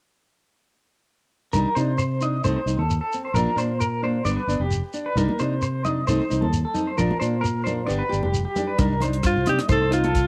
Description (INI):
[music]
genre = highlife guitar band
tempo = 132 BPM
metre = 4/4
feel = swing 54% on 16ths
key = C minor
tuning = A4 = 444 Hz
[part]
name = fingerpicked steel-string acoustic guitar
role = accompaniment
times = 1.5-10.1 s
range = F3 to G4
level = -28 LUFS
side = equal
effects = cassette tape
[part]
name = clean electric guitar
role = arpeggios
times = 1.5-10.3 s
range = G4 to Eb5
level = -30 LUFS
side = equal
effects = tremolo, cassette tape, tape echo
[part]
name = fingered electric bass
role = bass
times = 1.5-10.3 s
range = F1 to C3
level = -27 LUFS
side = equal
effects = none
[part]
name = shekere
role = percussion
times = 1.5-10.3 s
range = none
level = -31 LUFS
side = equal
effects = none
[part]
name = congas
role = percussion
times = 5.3-10.1 s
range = none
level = -34 LUFS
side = equal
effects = none
[part]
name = tight funk drum kit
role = drums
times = 8.8-10.3 s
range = hi-hat, kick drum, rim click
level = -27 LUFS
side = equal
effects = cassette tape
[part]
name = breathy alto saxophone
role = melody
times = 9.3-10.3 s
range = F4 to A4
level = -24 LUFS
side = equal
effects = cassette tape
[sound]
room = light reverb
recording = home recording on cassette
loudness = -23 LUFS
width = mono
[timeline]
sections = 1.5-8.8 A section; 8.8-10.3 B section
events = none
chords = 1.5 Cmadd9; 2.4 Cm6; 3.4 Bb; 4.3 G; 5.2 Cmadd9; 6.1 Cm6; 7.0 Bb; 7.9 G; 8.8 Cmadd9; 9.7 F7/C